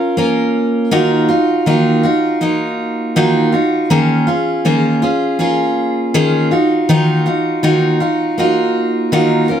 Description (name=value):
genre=pop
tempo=80 BPM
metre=4/4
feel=swing 55% on 16ths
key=Eb minor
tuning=A4 = 440 Hz
part: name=picked steel-string acoustic guitar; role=solo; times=0.0-9.6 s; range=Eb3 to Bb4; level=-12 LUFS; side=equal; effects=none
room=light reverb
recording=none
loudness=-12 LUFS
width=side -9 dB against mid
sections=0.9-9.6 A section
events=none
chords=0.0 Bbm; 0.9 Ebmadd9; 3.9 Db6/Eb; 6.5 Ebmadd9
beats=0.18 | 0.93 1.67 2.42 3.17 | 3.91 4.66 5.40 6.15 | 6.89 7.64 8.38 9.13